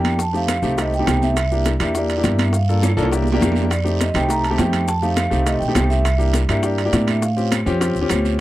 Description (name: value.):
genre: Afro-Cuban jazz.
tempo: 205 BPM.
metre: 4/4.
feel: straight.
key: unclear.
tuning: A4 = 441 Hz.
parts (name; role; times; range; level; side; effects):
vibraphone with soft mallets; melody; 0.0-7.5 s; D5 to Bb5; -24 LUFS; right 3 dB; none.
warm concert grand piano; accompaniment; 0.0-8.4 s; A3 to A4; -22 LUFS; left 2 dB; none.
upright bass; bass; 0.0-8.4 s; Bb1 to A2; -20 LUFS; right 1 dB; none.
congas; percussion; 0.0-8.3 s; none; -25 LUFS; left 1 dB; none.
guiro; percussion; 0.0-8.4 s; none; -36 LUFS; right 15 dB; none.
timbales; percussion; 0.0-8.2 s; none; -27 LUFS; right 7 dB; none.
claves; percussion; 0.1-8.3 s; none; -34 LUFS; left 1 dB; none.
maracas; percussion; 0.1-8.4 s; none; -35 LUFS; left 8 dB; none.
bongos; percussion; 0.2-8.4 s; none; -27 LUFS; left 3 dB; none.
room: little or no reverb.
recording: dry, close 1970s-style studio recording.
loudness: -16 LUFS.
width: side -15 dB against mid.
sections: 0.0-8.4 A section.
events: drum fill 2.8-3.7.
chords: 0.2 F9; 1.4 C9; 2.5 Gm7; 3.1 C9; 3.7 F9; 6.1 C9; 7.2 A7alt.